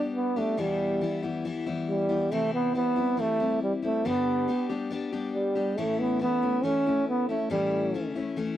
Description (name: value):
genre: country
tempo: 138 BPM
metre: 4/4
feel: straight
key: unclear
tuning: A4 = 440 Hz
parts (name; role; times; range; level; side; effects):
- warm trombone; melody; 0.0-8.1 s; G3 to C#4; -26 LUFS; right 1 dB; none
- picked steel-string acoustic guitar; accompaniment; 0.0-8.6 s; E2 to G4; -30 LUFS; left 4 dB; none
room: light reverb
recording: dry, close 1970s-style studio recording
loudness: -25 LUFS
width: side -12 dB against mid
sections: 0.0-8.6 A section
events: none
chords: 0.0 G; 0.6 Em; 2.3 C; 4.0 G; 5.8 A